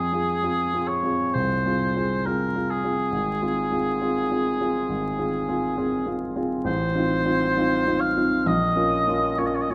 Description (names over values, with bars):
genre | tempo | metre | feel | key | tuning
classical, romantic duo for oboe and grand piano | 67 BPM | 4/4 | rubato | F minor | A4 = 439 Hz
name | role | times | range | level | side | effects
warm oboe | melody | 0.0-9.7 s | Ab4 to F5 | -27 LUFS | equal | none
clear concert grand piano | accompaniment | 0.0-9.7 s | Ab1 to Ab4 | -26 LUFS | equal | none
room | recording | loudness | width
moderate recital hall reverb, RT60 1.6 s | dark, warm production, vinyl crackle | -24 LUFS | mono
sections
0.0-9.7 A section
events
none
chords
0.0 Fm; 3.1 Fm/Ab; 6.7 F7/A; 8.5 Bbm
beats
0.42 1.33 2.25 | 3.12 4.00 4.89 5.78 | 6.66 7.56 8.46 9.38